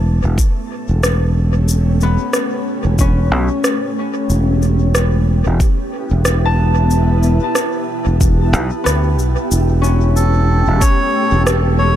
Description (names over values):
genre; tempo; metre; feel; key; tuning
ambient dub; 92 BPM; 4/4; swing 57% on 16ths; unclear; A4 = 441 Hz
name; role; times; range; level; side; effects
granular cloud pad; sustained chords; 0.0-12.0 s; A3 to A4; -22 LUFS; right 1 dB; built-in reverb
concert harp; arpeggios; 0.0-12.0 s; B3 to A5; -24 LUFS; left 4 dB; dub echo
fingered electric bass; bass; 0.0-12.0 s; E1 to D2; -14 LUFS; equal; tube saturation
electronic cabasa and rim click; drums; 0.4-11.6 s; none; -22 LUFS; equal; dub echo
electronic kick drum; drums; 0.4-11.0 s; none; -14 LUFS; equal; none
melodica; melody; 10.2-12.0 s; A4 to C#5; -18 LUFS; right 1 dB; dub echo
room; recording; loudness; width
light reverb; none; -13 LUFS; side -11 dB against mid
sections
0.0-9.5 A section; 9.5-12.0 B section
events
none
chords
0.0 A7/E; 4.3 Em; 9.5 A7/E